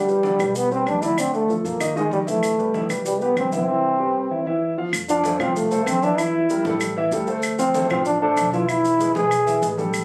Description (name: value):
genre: Afro-Cuban jazz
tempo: 192 BPM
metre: 4/4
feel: straight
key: C major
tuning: A4 = 440 Hz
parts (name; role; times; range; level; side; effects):
- breathy trombone; melody; 0.0-9.7 s; G3 to G#4; -23 LUFS; equal; none
- dark upright piano; accompaniment; 0.0-10.0 s; D3 to F5; -27 LUFS; equal; none
- upright bass; bass; 0.0-10.0 s; E1 to F2; -35 LUFS; equal; none
- congas; percussion; 0.1-10.0 s; none; -34 LUFS; equal; none
- maracas; percussion; 0.1-10.0 s; none; -38 LUFS; equal; none
- claves; percussion; 0.4-10.0 s; none; -30 LUFS; equal; none
room: light reverb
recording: recorded on a phone in the room, studio ambience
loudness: -21 LUFS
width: mono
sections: 0.0-4.9 A section; 4.9-10.0 B section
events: none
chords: 0.0 Em7; 1.2 Dm; 1.8 C7#9/G; 2.4 Cmaj7; 4.9 F6; 6.2 Edim; 6.8 A5; 7.4 Dm7; 8.7 E